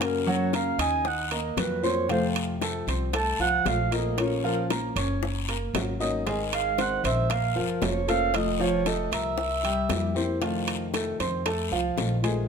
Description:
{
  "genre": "latin, Cuban son and guajira",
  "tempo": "115 BPM",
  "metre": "4/4",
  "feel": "straight",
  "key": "unclear",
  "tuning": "A4 = 439 Hz",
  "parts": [
    { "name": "dark clarinet", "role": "melody", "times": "0.0-10.4 s", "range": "Bb4 to A5", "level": "-28 LUFS", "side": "right 4 dB", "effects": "none" },
    { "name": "nylon-string guitar", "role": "accompaniment", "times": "0.0-12.5 s", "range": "C3 to C5", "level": "-31 LUFS", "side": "left 5 dB", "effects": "none" },
    { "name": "clear grand piano", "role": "arpeggios", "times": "0.0-12.5 s", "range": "F3 to Eb6", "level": "-30 LUFS", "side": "right 2 dB", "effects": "none" },
    { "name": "upright bass", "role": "bass", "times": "0.0-12.5 s", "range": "F1 to Gb2", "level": "-31 LUFS", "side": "equal", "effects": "none" },
    { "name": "bongos", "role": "percussion", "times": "0.0-12.2 s", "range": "none", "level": "-35 LUFS", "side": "left 8 dB", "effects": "none" },
    { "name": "guiro", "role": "percussion", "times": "0.0-12.5 s", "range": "none", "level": "-38 LUFS", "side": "left 8 dB", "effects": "none" },
    { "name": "timbales", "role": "percussion", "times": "0.0-12.5 s", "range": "none", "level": "-34 LUFS", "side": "right 7 dB", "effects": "none" }
  ],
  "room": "moderate studio reverb, RT60 0.9 s",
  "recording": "none",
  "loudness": "-24 LUFS",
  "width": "side -6 dB against mid",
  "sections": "0.0-12.5 A section",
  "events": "clarinet solo 0.0-12.5",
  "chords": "0.0 Gb; 1.1 Ebmadd9; 2.1 F; 4.2 Bbm; 5.2 Gb; 6.3 Abadd9; 7.3 Bbmadd9; 8.3 F; 9.4 C7; 10.4 F7"
}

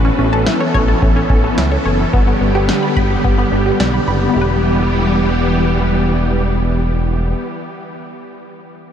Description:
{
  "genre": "synth-pop",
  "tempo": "108 BPM",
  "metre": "4/4",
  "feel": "straight",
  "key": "E dorian",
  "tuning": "A4 = 440 Hz",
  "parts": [
    { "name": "string machine, violas", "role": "sustained chords", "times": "0.0-7.3 s", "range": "D3 to A4", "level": "-17 LUFS", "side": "equal", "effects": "ensemble chorus" },
    { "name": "analog pluck", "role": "arpeggios", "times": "0.0-7.9 s", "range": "B3 to B5", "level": "-22 LUFS", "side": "left 1 dB", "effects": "chorus, phaser, ping-pong delay" },
    { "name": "smooth synth bass", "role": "bass", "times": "0.0-7.3 s", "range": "E1 to C#2", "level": "-17 LUFS", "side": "equal", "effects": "none" },
    { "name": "electro analog drum machine", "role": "drums", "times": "0.5-3.9 s", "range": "kick drum, snare drum", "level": "-20 LUFS", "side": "equal", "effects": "none" }
  ],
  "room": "moderate huge ambient reverb, RT60 7.3 s",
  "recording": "dreamy mix soaked in reverb",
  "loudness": "-12 LUFS",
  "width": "side -9 dB against mid",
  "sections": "0.0-4.4 A section; 4.4-6.6 B section",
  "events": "none",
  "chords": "0.0 Aadd9; 2.1 G; 4.4 Em"
}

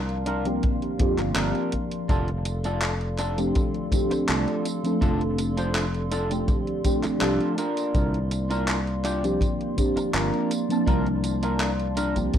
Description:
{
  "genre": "vaporwave",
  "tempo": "82 BPM",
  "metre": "4/4",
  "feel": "straight",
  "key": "F major",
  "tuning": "A4 = 440 Hz",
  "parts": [
    { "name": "mellow FM electric piano", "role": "accompaniment", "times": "0.0-12.4 s", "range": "F3 to A5", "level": "-26 LUFS", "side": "equal", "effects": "phaser, ensemble chorus, analog delay" },
    { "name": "warbly tape-like pad", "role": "sustained chords", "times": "0.0-12.4 s", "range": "Bb3 to C6", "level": "-33 LUFS", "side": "equal", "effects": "chorus, built-in reverb" },
    { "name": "overdriven fingered electric bass", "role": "bass", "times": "0.0-12.3 s", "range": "F1 to F2", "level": "-28 LUFS", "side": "equal", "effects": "none" },
    { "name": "gated 80s digital drum machine", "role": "drums", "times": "0.1-12.4 s", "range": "handclaps, hi-hat, tambourine", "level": "-31 LUFS", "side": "equal", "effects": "gated reverb" },
    { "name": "electric guitar at the edge of break-up", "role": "riff", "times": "0.3-12.4 s", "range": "D4 to C5", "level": "-30 LUFS", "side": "right 1 dB", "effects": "lush chorus, analog delay" },
    { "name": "kick drum", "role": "drums", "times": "0.6-12.4 s", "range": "none", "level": "-26 LUFS", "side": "equal", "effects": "none" }
  ],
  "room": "moderate studio reverb, RT60 0.6 s",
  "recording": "rough home demo mix",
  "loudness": "-22 LUFS",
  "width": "side -9 dB against mid",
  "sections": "0.0-12.4 A section",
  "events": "none",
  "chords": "0.0 C9sus4; 2.1 F6; 7.6 C9sus4"
}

